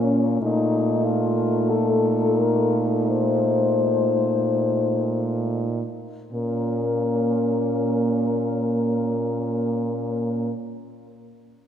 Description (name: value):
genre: classical, lyrical piece for horn quartet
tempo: 33-49 BPM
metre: 4/4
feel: rubato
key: Bb minor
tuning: A4 = 440 Hz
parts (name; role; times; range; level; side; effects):
- mellow French horn; melody; 0.0-10.5 s; Db4 to C5; -25 LUFS; left 7 dB; none
- warm French horn; second line; 0.0-10.5 s; Db4 to Eb4; -28 LUFS; right 5 dB; none
- mellow French horn; accompaniment; 0.0-10.5 s; A3 to Bb3; -27 LUFS; left 1 dB; none
- warm French horn; bass; 0.0-10.5 s; Bb2; -25 LUFS; right 2 dB; none
room: wet church reverb, RT60 2.7 s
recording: none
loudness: -20 LUFS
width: side -9 dB against mid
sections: 0.0-6.3 A section; 6.3-11.7 B section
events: slowing down 0.0-6.3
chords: 0.4 Bbsus24; 6.3 Bbm